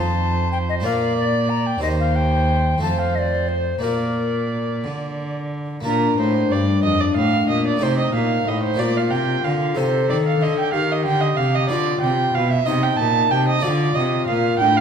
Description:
classical, baroque-style sonata movement with continuo; 61 BPM (dotted quarters); 6/8; straight; Bb major; A4 = 440 Hz
tenor recorder; melody; 0.0-14.8 s; D4 to Bb5; -23 LUFS; left 8 dB
dark violin; second line; 0.0-14.8 s; Bb4 to A5; -22 LUFS; right 6 dB
harpsichord; accompaniment; 0.0-14.8 s; Eb2 to D5; -26 LUFS; left 2 dB
rich cello; bass; 0.0-14.8 s; Eb2 to Eb3; -22 LUFS; right 1 dB
wet recital hall reverb, RT60 1.4 s; dark, warm production; -17 LUFS; side -7 dB against mid
0.0-5.9 A section; 5.9-14.8 B section
0.0 F7; 0.8 Bb; 1.8 Cm/Eb; 2.8 F; 3.8 Bb; 7.8 Adim; 8.8 Bb; 9.8 Cm; 11.7 Bdim; 12.7 Cm; 13.6 Dm

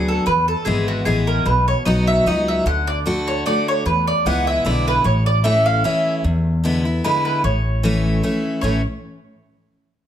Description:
bluegrass; 151 BPM; 3/4; swing 54% on 8ths; A major; A4 = 438 Hz
mandolin; melody; 0.0-8.8 s; F#4 to F#5; -20 LUFS; right 1 dB
picked steel-string acoustic guitar; accompaniment; 0.0-8.8 s; E2 to F#4; -21 LUFS; left 1 dB
upright bass; bass; 0.0-8.8 s; G#1 to E2; -21 LUFS; equal
moderate large studio reverb, RT60 1.4 s; close, detailed microphones; -16 LUFS; side -10 dB against mid
0.0-6.2 A section; 6.2-8.6 B section; 8.6-9.8 C section
0.3 E; 1.5 B; 2.7 D; 3.9 E7; 5.0 A; 6.2 E7; 7.4 A

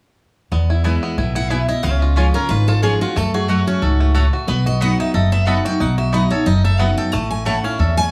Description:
bluegrass; 182 BPM; 4/4; swing 55% on 8ths; E major; A4 = 444 Hz
picked steel-string acoustic guitar; accompaniment; 0.5-8.1 s; E2 to F#4; -25 LUFS; equal
bluegrass banjo; arpeggios; 0.5-8.1 s; A3 to A4; -27 LUFS; equal
upright bass; bass; 0.5-8.1 s; F#1 to F#2; -20 LUFS; equal
mandolin; stabs; 0.8-7.6 s; A3 to B5; -28 LUFS; equal
picked steel-string acoustic guitar; melody; 1.4-8.1 s; F#4 to A5; -25 LUFS; equal
light reverb; small room ambience; -17 LUFS; mono
0.5-8.1 A section
0.5 E; 1.8 C#; 3.2 F#m; 4.5 B; 7.1 A

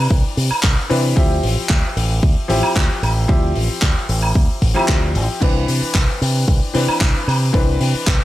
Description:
nu-disco, nu disco; 113 BPM; 4/4; straight; C major; A4 = 442 Hz
bright grand piano; accompaniment; 0.0-8.2 s; E3 to B4; -22 LUFS; left 2 dB; vintage 12-bit sampler grit, sidechain pumping, slapback echo
fingered electric bass with an envelope filter; bass; 0.0-8.2 s; A1 to C3; -19 LUFS; equal
electronic kick drum; drums; 0.1-8.2 s; -16 LUFS; equal
damped 70s drum kit; drums; 0.4-8.2 s; crash cymbal, handclaps, hi-hat, woodblock; -22 LUFS; equal
studio reverb; -14 LUFS; side -15 dB against mid
0.0-8.2 A section
0.0 Cmaj9; 1.2 Dm11; 5.4 Cmaj9

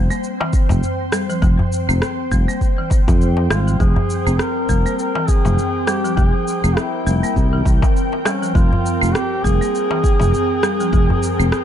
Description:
organic downtempo; 101 BPM; 4/4; swing 57% on 16ths; F harmonic minor; A4 = 435 Hz
ethereal airy pad; sustained chords; 0.0-11.6 s; C4 to G5; -24 LUFS; equal; ensemble chorus, built-in reverb, vintage 12-bit sampler grit, sidechain pumping
folk marimba with hard mallets; arpeggios; 0.0-11.5 s; E3 to C4; -24 LUFS; equal; ping-pong delay
sustaining fretless electric bass; bass; 0.0-11.5 s; F1 to F2; -18 LUFS; equal; tube saturation
electronic shaker and rim click; drums; 0.1-11.6 s; -26 LUFS; right 1 dB; overdrive
darbuka; percussion; 0.1-11.2 s; -24 LUFS; left 1 dB
electronic kick drum; drums; 0.5-11.1 s; -17 LUFS; equal; overdrive
warm duduk; melody; 3.5-11.6 s; Db4 to Bb4; -23 LUFS; equal; ping-pong delay
light reverb, small room ambience; nothing above 11.0 kHz; -15 LUFS; side -10 dB against mid
0.0-11.6 A section
0.0 Fmadd9

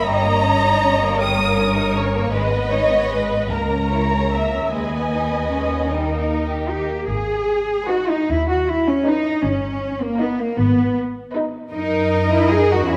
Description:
classical, slow romantic movement for string orchestra; 51 BPM (dotted quarters); 6/8; rubato; G# minor; A4 = 439 Hz
rich studio violin section; melody; 0.0-13.0 s; B4 to D#6; -25 LUFS; equal
rich studio violin section; second line; 0.0-13.0 s; G3 to C#5; -27 LUFS; equal
warm studio viola section; accompaniment; 0.0-13.0 s; C#4 to E5; -27 LUFS; equal
warm studio cello section; bass; 0.0-13.0 s; C#2 to G#4; -23 LUFS; equal
warm studio double bass section; bass; 0.0-13.0 s; G1 to F#2; -27 LUFS; equal
moderate concert hall reverb, RT60 1.7 s; -19 LUFS; mono
0.0-7.1 A section; 7.1-13.0 B section
0.1 D#7/G; 2.3 G#m; 3.5 A#dim/C#; 4.7 G#m/D#; 5.9 D#; 7.1 G#m; 9.4 D#7/G; 10.6 G#m; 11.7 D#m/F#

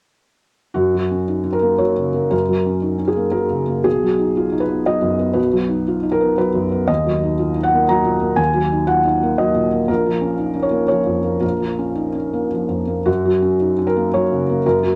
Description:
neoclassical minimalist piano; 118 BPM; 3/4; rubato; A4 = 442 Hz
felt-muted upright piano; solo; 0.7-15.0 s; Bb1 to Bb5; -18 LUFS; equal
moderate stone room reverb, RT60 1.1 s; worn, warbling old tape, cassette tape, warbly pitch drift; -18 LUFS; mono
0.8-13.1 A section; 13.1-15.0 A section
0.8 Gb; 3.9 B6; 6.9 Ebm; 9.9 Bbm; 13.1 Gb

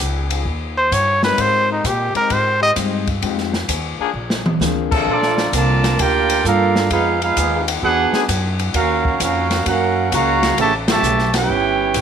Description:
jazz, big band swing; 131 BPM; 4/4; swing 67% on 8ths; A4 = 440 Hz
clear trombone section; sustained chords; 0.0-12.0 s; C#3 to A4; -25 LUFS; left 11 dB
upright bass; bass; 0.0-12.0 s; G1 to Bb2; -22 LUFS; equal
open jazz drum kit; drums; 0.3-12.0 s; crash cymbal, hi-hat, kick drum, ride cymbal, snare drum, toms; -22 LUFS; left 2 dB
warm trumpet; melody; 0.8-2.7 s; Eb4 to Eb5; -16 LUFS; equal
warm concert grand piano; accompaniment; 1.2-5.1 s; Ab3 to C5; -25 LUFS; left 13 dB
mellow trumpet section; melody; 5.1-12.0 s; Bb3 to Bb5; -18 LUFS; right 2 dB
warm trombone section; second line; 5.1-12.0 s; C#3 to A4; -22 LUFS; right 12 dB
moderate spring reverb, RT60 2.0 s; 1960s-style stereo with parts hard left and right; -15 LUFS; side -8 dB against mid
0.0-5.1 A section; 5.1-12.0 B section
trumpet solo 0.0-5.1; drum fill 4.1-4.6; band accent 10.8
0.5 Eb; 1.4 Abmaj7; 3.2 Fm7; 4.1 Bb7; 5.1 Bbmaj7; 6.9 Fm7b5; 7.8 E9; 8.7 Ebm9; 10.6 A9

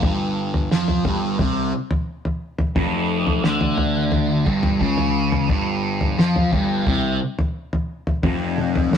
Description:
psychedelic rock; 88 BPM; 4/4; straight; A4 = 442 Hz
fuzz guitar; riff; 0.0-9.0 s; F2 to F3; -21 LUFS; left 1 dB; distortion, phaser
fuzz picked electric bass; bass; 0.0-9.0 s; F1 to F2; -25 LUFS; equal; overdrive
cloth-damped thuddy drum kit; drums; 0.0-9.0 s; kick drum, snare drum, toms; -22 LUFS; equal
moderate stone room reverb, RT60 1.1 s; rough rehearsal-room recording, tube saturation; -18 LUFS; side -8 dB against mid
0.0-9.0 A section
0.0 G5

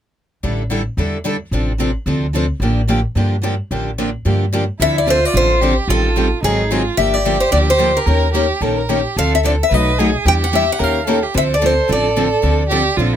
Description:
acoustic string swing (jazz manouche); 220 BPM; 4/4; swing 58% on 8ths; D minor; A4 = 440 Hz
picked steel-string acoustic guitar; accompaniment; 0.4-13.2 s; B2 to Bb4; -21 LUFS; left 4 dB
picked steel-string acoustic guitar; accompaniment; 0.4-13.2 s; B2 to B4; -24 LUFS; right 6 dB
upright bass; bass; 0.4-13.2 s; G1 to G2; -19 LUFS; equal
picked acoustic archtop guitar; melody; 4.8-13.2 s; G#4 to G5; -17 LUFS; left 2 dB
warm violin; second line; 4.8-13.2 s; D#4 to C5; -20 LUFS; right 5 dB
little or no reverb; close, detailed microphones; -14 LUFS; side -10 dB against mid
0.4-4.8 A section; 4.8-13.2 B section
0.4 A7sus4; 1.5 Dm7/A; 2.6 Gm9/A; 4.8 Dm7; 5.9 Am7b5; 6.4 G#7; 7.0 Gm7; 8.1 Eb7; 9.2 Dm7; 9.7 B7; 10.3 Em7; 10.8 Eb9; 11.3 Dm7

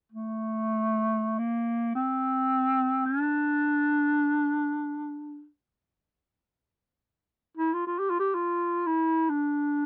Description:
Turkish makam ensemble; free time; D makam ussak; A4 = 440 Hz
mellow clarinet; solo; 0.1-9.9 s; A3 to G4; -28 LUFS; equal
light reverb; dry, close 1970s-style studio recording; -27 LUFS; mono
0.0-9.9 A section

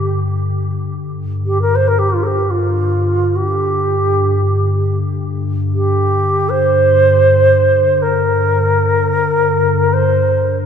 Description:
world meditative, free-time meditation music; free time; G minor pentatonic; A4 = 441 Hz
bright reedy xiao; melody; 0.0-10.6 s; F4 to C5; -14 LUFS; right 1 dB
warbly tape-like pad; drone; 0.0-10.7 s; G2 to D3; -16 LUFS; left 2 dB; chorus, built-in reverb
moderate huge ambient reverb, RT60 4.1 s; dark, warm production; -12 LUFS; side -7 dB against mid
0.0-10.7 A section

